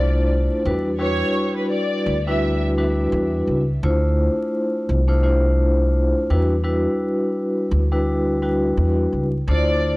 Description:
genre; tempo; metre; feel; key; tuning
hip hop, boom-bap hip-hop; 85 BPM; 4/4; swing 59% on 16ths; unclear; A4 = 440 Hz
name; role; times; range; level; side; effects
dark studio violin section; melody; 0.0-2.6, 9.5-10.0 s; B4 to E5; -26 LUFS; equal; high-pass filter, low-pass filter, tape echo
vibraphone with medium mallets; accompaniment; 0.0-10.0 s; G3 to C5; -21 LUFS; equal; cassette tape, high-pass filter, low-pass filter
upright bass; bass; 0.0-9.9 s; C2 to E2; -20 LUFS; equal; tube saturation
room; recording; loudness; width
small room ambience; dry, gritty hardware recording, transformer saturation, vinyl crackle; -18 LUFS; side -21 dB against mid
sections
0.0-10.0 A section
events
none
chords
0.0 Dm9; 0.7 Em9; 3.8 Dm9; 6.3 Em9

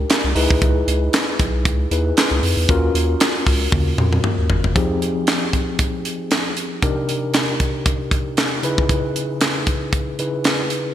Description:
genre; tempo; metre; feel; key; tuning
early-eighties boogie funk; 116 BPM; 4/4; swing 56% on 16ths; unclear; A4 = 440 Hz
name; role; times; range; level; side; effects
tine electric piano; accompaniment; 0.0-10.9 s; C3 to Cb5; -22 LUFS; left 1 dB; fast stereo tremolo
saturated sub bass; bass; 0.0-4.7 s; Gb1 to F2; -20 LUFS; equal; none
tight funk drum kit; drums; 0.1-10.8 s; handclaps, hi-hat, kick drum, snare drum, toms; -18 LUFS; equal; gated reverb
room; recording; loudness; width
moderate lush hall reverb, RT60 2.2 s; bright 1980s-style digital production; -17 LUFS; side -11 dB against mid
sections
0.0-4.8 A section; 4.8-10.9 B section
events
drum fill 3.7-4.8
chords
0.4 Dbm9; 2.7 Ebm9; 4.8 Fm9; 6.8 Cm9; 8.6 Dbm9

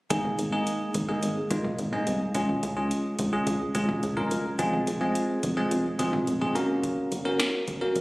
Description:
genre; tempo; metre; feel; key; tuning
synth-pop; 107 BPM; 4/4; straight; Ab mixolydian; A4 = 440 Hz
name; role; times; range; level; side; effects
bell-like tine electric piano; accompaniment; 0.1-8.0 s; Ab3 to Bb4; -26 LUFS; equal; phaser
rubbery square bass; bass; 0.1-8.0 s; F1 to Db2; -32 LUFS; equal; none
electro analog drum machine; drums; 0.1-8.0 s; hi-hat, kick drum, snare drum, toms; -32 LUFS; equal; none
room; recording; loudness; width
moderate concert hall reverb, RT60 1.9 s; recorded on a phone in the room, studio reverb, compression; -25 LUFS; side -21 dB against mid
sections
0.1-8.0 A section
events
none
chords
0.1 Absus2; 2.3 Db; 4.6 Fm; 6.6 Gb

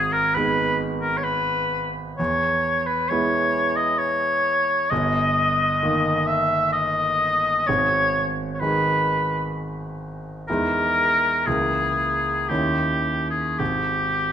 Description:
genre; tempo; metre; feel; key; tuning
classical, romantic duo for oboe and grand piano; 53-68 BPM; 3/4; rubato; G# minor; A4 = 439 Hz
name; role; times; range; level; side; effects
clear oboe; melody; 0.0-14.3 s; G4 to E5; -21 LUFS; left 1 dB; none
clear grand piano; accompaniment; 0.0-14.3 s; G1 to E4; -26 LUFS; right 2 dB; none
room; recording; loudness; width
moderate recital hall reverb, RT60 1.5 s; minimal, uncompressed stereo recording; -19 LUFS; side -9 dB against mid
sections
0.0-14.3 A section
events
none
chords
0.0 G#m; 2.2 E; 4.9 D#/G; 7.7 G#m; 10.5 Emaj7; 11.5 A#m7b5/C#; 12.5 D#7b9; 13.6 N.C.

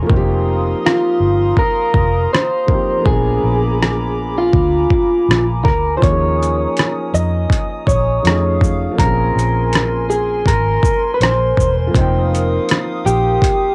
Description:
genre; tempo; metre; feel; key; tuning
lo-fi hip hop; 81 BPM; 4/4; swing 56% on 16ths; Bb dorian; A4 = 440 Hz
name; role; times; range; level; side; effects
felt-muted upright piano; accompaniment; 0.0-13.7 s; F3 to G5; -25 LUFS; equal; cassette tape
hollow soft pad; sustained chords; 0.0-13.7 s; A3 to Eb6; -29 LUFS; equal; chorus, cassette tape
vintage muted fingered electric bass; bass; 0.0-13.4 s; E1 to F2; -21 LUFS; equal; tube saturation
dusty soul sampler-style drum kit; drums; 0.1-13.6 s; hi-hat, kick drum, rim click, shaker; -19 LUFS; equal; overdrive, cassette tape
electric guitar through a small old amp; melody; 0.9-13.7 s; F4 to Eb5; -20 LUFS; equal; cassette tape, tape echo
room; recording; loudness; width
light reverb; home recording on cassette; -16 LUFS; mono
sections
0.0-13.7 A section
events
break 0.0-6.0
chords
0.1 F7sus4; 3.1 Bb7b9; 6.0 Eb7sus4; 8.2 F7alt; 9.0 Bbm9; 11.9 F7sus4

